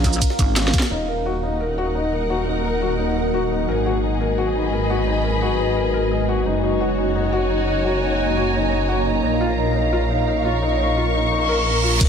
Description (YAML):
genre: dark technical drum and bass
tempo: 173 BPM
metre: 4/4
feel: straight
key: Eb minor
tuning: A4 = 440 Hz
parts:
  - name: deep dark ambient pad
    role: sustained chords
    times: 0.0-12.0 s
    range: Ab3 to F5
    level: -25 LUFS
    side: equal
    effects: chorus, built-in reverb, sidechain pumping
  - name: pulsing pluck wobble bass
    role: bass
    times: 0.0-0.7 s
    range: Ab1 to Bb1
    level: -21 LUFS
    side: equal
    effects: chorus
  - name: drum and bass drum kit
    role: drums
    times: 0.0-0.9, 12.0-12.1 s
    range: crash cymbal, hi-hat, ride cymbal, shaker, snare drum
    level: -24 LUFS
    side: right 1 dB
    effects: none
  - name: electronic kick drum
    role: drums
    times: 0.0-0.8, 12.0-12.1 s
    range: none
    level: -18 LUFS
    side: equal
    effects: none
  - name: jungle sampler-style drum kit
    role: drums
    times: 0.0-0.9, 12.0-12.1 s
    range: hi-hat, snare drum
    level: -31 LUFS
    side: right 1 dB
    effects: none
  - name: felt-muted upright piano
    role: arpeggios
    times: 0.9-11.9 s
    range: Eb4 to Eb5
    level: -24 LUFS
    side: left 2 dB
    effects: vintage 12-bit sampler grit, sidechain pumping, digital delay
  - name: snarling distorted saw bass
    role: bass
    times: 0.9-12.1 s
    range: Eb1 to Bb1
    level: -24 LUFS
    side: equal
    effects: tube saturation, sidechain pumping
  - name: dark symphonic string section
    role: texture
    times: 0.9-12.1 s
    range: Eb4 to Db6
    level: -24 LUFS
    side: left 1 dB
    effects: sidechain pumping
  - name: reverse cymbal and impact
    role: sound effects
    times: 11.4-12.1 s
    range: none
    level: -23 LUFS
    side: right 6 dB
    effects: none
room: moderate lush hall reverb, RT60 1.7 s, digital ambience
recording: none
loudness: -18 LUFS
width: side -7 dB against mid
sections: 0.9-12.0 A section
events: drum fill 0.6-0.9; band accent 0.8; reverse cymbal 11.4-12.0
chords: 0.0 Bbm; 0.9 Ebm; 3.7 Abm7; 6.5 Gb; 9.2 Bbm